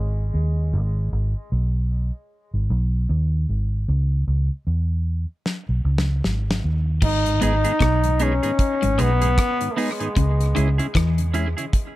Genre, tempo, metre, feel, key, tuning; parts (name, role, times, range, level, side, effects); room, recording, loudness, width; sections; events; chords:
dub reggae; 76 BPM; 4/4; swing 58% on 16ths; G# minor; A4 = 438 Hz
bright trombone; melody; 0.0-0.3, 7.0-11.0 s; G#3 to D#4; -24 LUFS; left 1 dB; low-pass filter, tape echo
vintage muted fingered electric bass; bass; 0.0-11.5 s; G#1 to E2; -20 LUFS; equal
damped 70s drum kit; drums; 5.5-11.9 s; crash cymbal, hi-hat, kick drum, rim click, snare drum; -24 LUFS; equal
electric guitar at the edge of break-up; riff; 7.0-11.2 s; G#2 to E3; -28 LUFS; left 4 dB; tremolo, tape echo
mellow tonewheel organ; accompaniment; 7.2-11.7 s; G#2 to E4; -30 LUFS; left 2 dB; slow rotary speaker, high-pass filter
clean electric guitar; accompaniment; 7.4-11.7 s; B3 to G#4; -29 LUFS; right 6 dB; high-pass filter, low-pass filter, tape echo
small room ambience; -19 LUFS; side -16 dB against mid
0.0-7.0 A section; 7.0-12.0 B section
break 0.0-7.0; drum fill 5.4-7.0; filter sweep 10.2-12.0
0.0 N.C.; 0.7 G#m; 3.9 C#m; 7.0 G#m; 10.2 C#m